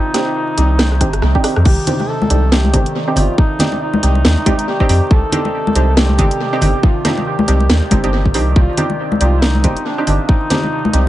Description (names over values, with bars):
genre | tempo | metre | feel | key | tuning
deep dubstep | 139 BPM | 4/4 | swing 58% on 16ths, half-time | C dorian | A4 = 442 Hz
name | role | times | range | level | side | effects
warm duduk | melody | 0.0-11.1 s | D4 to A4 | -21 LUFS | equal | dub echo
overtone-sweeping drone | sustained chords | 0.0-11.1 s | C3 to D5 | -24 LUFS | equal | chorus, built-in reverb, phaser
filtered dub chord stab | stabs | 0.1-11.0 s | C4 to G4 | -21 LUFS | right 2 dB | chorus, dub echo
garage drum kit | drums | 0.1-11.0 s | crash cymbal, hi-hat, rim click, snare drum | -18 LUFS | equal | tape echo
soft dub sub bass | bass | 0.6-11.1 s | G1 to F2 | -14 LUFS | equal | tube saturation
electronic kick drum | drums | 1.0-10.4 s | none | -14 LUFS | equal | none
congas | percussion | 1.9-10.9 s | none | -20 LUFS | left 2 dB | dub echo
room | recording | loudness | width
light reverb | echo-heavy mix, vinyl crackle, nothing above 10.9 kHz | -12 LUFS | side -14 dB against mid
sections
0.0-11.1 A section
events
drum fill 0.8-1.7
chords
0.0 Cmadd9